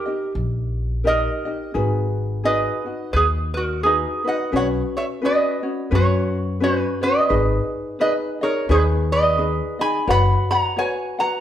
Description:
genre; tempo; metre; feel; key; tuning
Hawaiian; 86 BPM; 4/4; swing 59% on 8ths; B major from 4.5 s; A4 = 441 Hz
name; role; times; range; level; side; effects
lap resonator guitar; melody; 0.0-11.4 s; D#4 to B5; -21 LUFS; right 1 dB; none
ukulele; accompaniment; 0.0-11.4 s; C#4 to F#5; -24 LUFS; left 2 dB; none
upright bass; bass; 0.3-10.3 s; F#1 to F#2; -22 LUFS; left 1 dB; none
room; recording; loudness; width
wet large studio reverb, RT60 1.2 s; band playing live in one room; -18 LUFS; side -10 dB against mid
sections
0.0-4.5 A section; 4.5-11.4 B section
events
none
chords
0.0 D#; 1.7 G#m7; 4.5 Bsus2; 7.3 G#m; 10.1 F#sus4

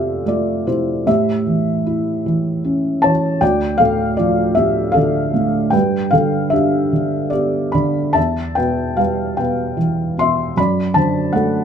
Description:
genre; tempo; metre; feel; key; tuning
classical, lyrical solo piano; 76 BPM; 3/4; uneven beats, rubato; unclear; A4 = 440 Hz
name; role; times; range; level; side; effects
felt-muted upright piano; solo; 0.0-11.6 s; D2 to C6; -15 LUFS; equal; none
room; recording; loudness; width
moderate studio reverb, RT60 0.7 s; minimal, uncompressed stereo recording; -15 LUFS; side -8 dB against mid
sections
0.0-11.6 A section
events
none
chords
0.0 F; 1.1 A7; 3.4 Dm; 5.7 G; 8.2 Em; 10.6 D/F#

